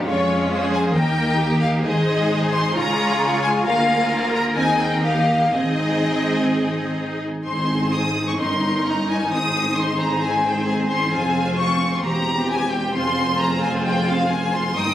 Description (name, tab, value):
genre	quick classical-period movement for string orchestra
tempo	132 BPM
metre	4/4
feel	rubato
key	Ab major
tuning	A4 = 444 Hz
part	rich studio violin section	melody	0.0-14.9 s	Db5 to Eb6	-22 LUFS	left 2 dB	none
part	bright symphonic viola section	accompaniment	0.0-14.9 s	Ab3 to G4	-23 LUFS	right 1 dB	none
part	rich symphonic double bass section	bass	0.0-14.9 s	E1 to F2	-24 LUFS	equal	none
part	warm symphonic cello section	bass	0.0-14.9 s	E2 to Bb4	-28 LUFS	right 1 dB	none
part	clear studio violin section	second line	0.1-14.9 s	F4 to G5	-27 LUFS	left 2 dB	none
room	wet recital hall reverb, RT60 1.6 s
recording	recorded on a phone in the room, studio reverb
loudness	-18 LUFS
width	side -12 dB against mid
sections	0.0-7.5 A section; 7.5-14.9 B section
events	none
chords	0.1 Db/F; 0.9 Eb; 1.8 Ab; 2.8 Db; 3.7 Bb7/D; 4.6 Ab/Eb; 5.0 Eb; 5.5 Ab; 8.4 Eb7/G; 9.3 Ab; 11.1 Fm; 12.0 C7/E; 13.0 Fm